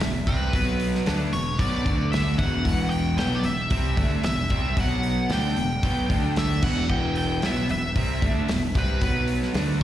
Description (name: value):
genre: quiet-loud alternative rock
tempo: 113 BPM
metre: 4/4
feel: straight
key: E minor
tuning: A4 = 439 Hz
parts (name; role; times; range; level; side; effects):
- nasal lead guitar with a parked wah; melody; 0.0-9.8 s; B4 to G5; -29 LUFS; equal; overdrive, slapback echo, analog delay
- overdriven semi-hollow guitar; riff; 0.0-9.8 s; E2 to D4; -26 LUFS; equal; slapback echo
- fuzz picked electric bass; bass; 0.0-9.8 s; E1 to D2; -27 LUFS; equal; overdrive
- loose indie drum kit; drums; 0.0-9.8 s; crash cymbal, hi-hat, kick drum, snare drum; -27 LUFS; equal; none
room: studio ambience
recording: live gig heard through the venue's PA, recital hall reverb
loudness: -21 LUFS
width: side -12 dB against mid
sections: 0.0-9.8 A section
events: none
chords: 0.0 Em; 0.5 B5; 1.1 E5; 1.9 D5; 2.4 Em; 4.8 B5; 5.3 Em; 6.1 D5; 6.6 Em; 9.0 B5; 9.5 Bm7/D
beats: 0.00 | 0.53 1.06 1.59 2.12 | 2.65 3.17 3.71 4.24 | 4.77 5.30 5.83 6.36 | 6.89 7.42 7.95 8.48 | 9.01 9.54